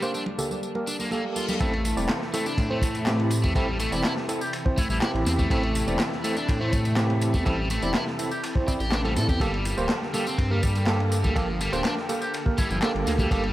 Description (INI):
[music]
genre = breakbeat, breaks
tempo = 123 BPM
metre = 4/4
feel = straight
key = A phrygian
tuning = A4 = 440 Hz
[part]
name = lush unison pad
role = sustained chords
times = 0.0-13.5 s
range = C3 to A4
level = -33 LUFS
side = equal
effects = chorus, sidechain pumping
[part]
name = crunchy overdriven guitar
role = riff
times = 0.0-13.5 s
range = F3 to A4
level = -30 LUFS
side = equal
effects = analog delay
[part]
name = overdriven tine electric piano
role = stabs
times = 0.0-13.4 s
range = Bb3 to D5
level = -30 LUFS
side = right 2 dB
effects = fast tremolo, vintage 12-bit sampler grit, analog delay
[part]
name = electronic tambourine and handclaps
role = drums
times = 0.0-13.4 s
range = none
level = -35 LUFS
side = equal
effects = analog delay
[part]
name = congas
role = percussion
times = 0.3-1.6 s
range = none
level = -37 LUFS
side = right 1 dB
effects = analog delay
[part]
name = reverse cymbal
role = sound effects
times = 1.1-1.6 s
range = none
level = -38 LUFS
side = left 5 dB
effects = none
[part]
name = dark detuned saw bass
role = bass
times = 1.6-13.5 s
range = D1 to A2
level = -27 LUFS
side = equal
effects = none
[part]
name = crunchy breakbeat drum kit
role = drums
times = 1.6-13.5 s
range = kick drum, ride cymbal, snare drum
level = -28 LUFS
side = equal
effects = none
[part]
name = trumpet with metal mute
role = melody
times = 4.4-5.0, 8.3-8.4, 12.2-12.8 s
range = E4 to G4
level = -36 LUFS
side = equal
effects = small speaker sound, analog delay
[sound]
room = moderate spring reverb, RT60 1.7 s, studio reverb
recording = echo-heavy mix, vinyl crackle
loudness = -22 LUFS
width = side -15 dB against mid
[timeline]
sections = 0.0-1.6 A section; 1.6-13.5 B section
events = reverse cymbal 1.1-1.6; drop 1.6-13.5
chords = 0.0 Gmadd9; 1.6 Am; 9.4 Gmadd9